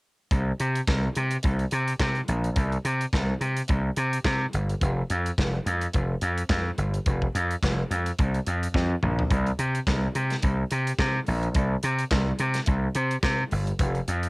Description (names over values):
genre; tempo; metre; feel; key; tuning
disco; 107 BPM; 4/4; swing 56% on 16ths; unclear; A4 = 441 Hz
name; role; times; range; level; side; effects
gritty slap bass; bass; 0.3-14.3 s; F1 to C3; -24 LUFS; equal; overdrive
modern studio drum kit; drums; 0.3-14.3 s; handclaps, hi-hat, kick drum, snare drum, toms; -28 LUFS; equal; cassette tape
room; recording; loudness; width
little or no reverb; home recording on cassette; -23 LUFS; side -28 dB against mid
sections
0.3-14.3 A section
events
drum fill 8.7-9.3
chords
none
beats
| 0.31 0.88 1.44 2.00 | 2.57 3.13 3.69 4.25 | 4.82 5.38 5.94 6.50 | 7.06 7.62 8.18 8.74 | 9.30 9.87 10.43 10.99 | 11.55 12.11 12.67 13.23 | 13.79